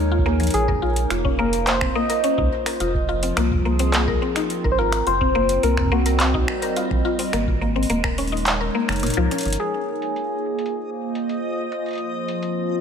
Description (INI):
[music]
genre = IDM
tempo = 106 BPM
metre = 4/4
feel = straight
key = Bb minor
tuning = A4 = 439 Hz
[part]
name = warbly tape-like pad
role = sustained chords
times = 0.0-12.8 s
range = F3 to Eb5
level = -26 LUFS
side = right 1 dB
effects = chorus, built-in reverb, sidechain pumping
[part]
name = rubbery square bass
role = bass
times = 0.0-9.6 s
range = Eb1 to Eb2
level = -23 LUFS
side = right 1 dB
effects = none
[part]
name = mallet-like synth pluck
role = arpeggios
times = 0.1-9.4 s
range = Bb2 to Bb4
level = -24 LUFS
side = left 4 dB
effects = analog chorus, cassette tape, ping-pong delay
[part]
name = electronic kick drum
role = drums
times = 0.2-8.2 s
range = none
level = -26 LUFS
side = right 1 dB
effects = none
[part]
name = booming analog drum machine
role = drums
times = 0.4-12.5 s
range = finger snaps, handclaps, hi-hat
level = -26 LUFS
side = right 1 dB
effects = low-pass filter on hats, low-pass filter on snare, ping-pong delay
[part]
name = soft struck synth lead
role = melody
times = 0.5-11.5 s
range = Gb4 to Eb5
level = -25 LUFS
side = equal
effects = chorus, phaser, vintage 12-bit sampler grit, digital delay
[part]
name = backwards swelling texture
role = texture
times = 10.8-12.8 s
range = Eb5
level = -32 LUFS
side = equal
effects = built-in reverb
[sound]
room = moderate echo chamber reverb, RT60 1.9 s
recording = none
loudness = -19 LUFS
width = side -7 dB against mid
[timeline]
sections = 0.0-9.6 A section; 9.6-12.8 B section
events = kick drops out 8.5-9.6; drum fill 9.3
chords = 0.0 Absus24; 0.5 Bbm11; 2.8 Fm; 5.1 Cm7b5/Gb; 7.3 Absus4; 9.6 Bbm11; 11.9 F7(no3)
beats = | 0.54 1.11 1.67 2.24 | 2.80 3.37 3.94 4.50 | 5.07 5.63 6.20 6.77 | 7.33 7.90 8.46 9.03 | 9.60 10.16 10.73 11.29 | 11.86 12.43